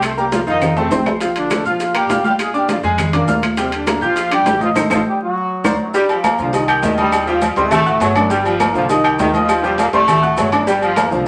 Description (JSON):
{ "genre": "latin, salsa", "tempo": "203 BPM", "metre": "4/4", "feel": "straight", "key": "G minor", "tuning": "A4 = 440 Hz", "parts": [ { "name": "brilliant trombone section", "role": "melody", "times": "0.0-11.3 s", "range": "F#2 to A4", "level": "-21 LUFS", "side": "equal", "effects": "none" }, { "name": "bright concert grand piano", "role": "accompaniment", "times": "0.0-11.2 s", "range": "F3 to G6", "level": "-22 LUFS", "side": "equal", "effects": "none" }, { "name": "upright bass", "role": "bass", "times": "0.0-11.3 s", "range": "G1 to Bb2", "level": "-30 LUFS", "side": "equal", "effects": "none" }, { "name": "bongos and cowbell", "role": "percussion", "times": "0.0-11.1 s", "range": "none", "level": "-29 LUFS", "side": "equal", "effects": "none" }, { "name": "claves", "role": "percussion", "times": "0.0-11.1 s", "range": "none", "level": "-28 LUFS", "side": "equal", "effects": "none" }, { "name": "congas", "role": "percussion", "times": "0.0-11.3 s", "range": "none", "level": "-25 LUFS", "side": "equal", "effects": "none" }, { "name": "maracas", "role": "percussion", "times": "0.0-11.3 s", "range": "none", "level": "-40 LUFS", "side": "equal", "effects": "none" }, { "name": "timbales and agogo bells", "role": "percussion", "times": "0.0-11.1 s", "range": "none", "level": "-23 LUFS", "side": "equal", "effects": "none" }, { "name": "bright trombone section", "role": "second line", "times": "5.9-11.3 s", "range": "Eb3 to A3", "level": "-22 LUFS", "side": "equal", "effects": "none" } ], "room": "wet studio reverb, RT60 0.5 s", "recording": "vinyl crackle", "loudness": "-16 LUFS", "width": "mono", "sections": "0.0-5.9 A section; 5.9-11.3 B section", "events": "drum fill 0.6-1.2, 5.2-5.9; band accent 4.8-5.9", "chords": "0.0 Cm7; 0.6 F7; 1.2 Bbmaj7; 2.4 Bb6; 3.6 Ebmaj9; 4.8 Am7b5; 5.3 Daug7; 5.9 Gm7; 6.5 Cm; 7.1 Ebadd9; 7.7 D7; 8.3 Gm7; 8.9 Cm; 9.5 Ebadd9; 10.1 D7; 10.7 Gm7" }